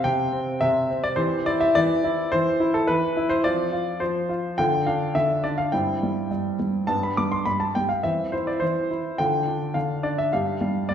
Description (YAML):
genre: classical-period piano sonatina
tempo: 105 BPM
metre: 4/4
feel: straight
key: C major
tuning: A4 = 439 Hz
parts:
  - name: clear grand piano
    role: solo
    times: 0.0-10.9 s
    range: G2 to D6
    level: -21 LUFS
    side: equal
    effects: none
room: wet recital hall reverb, RT60 1.5 s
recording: heard from further back in the room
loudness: -21 LUFS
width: side -8 dB against mid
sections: 0.0-10.9 A section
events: none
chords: 0.0 C; 1.2 C/E; 3.4 F5; 4.6 Dm; 5.7 C/G; 6.9 G; 8.0 C/E; 9.2 Dm; 10.3 G5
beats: 0.04 0.61 | 1.18 1.75 2.32 2.88 | 3.45 4.01 4.57 5.14 | 5.71 6.30 6.88 7.46 | 8.04 8.62 9.19 9.76 | 10.33 10.90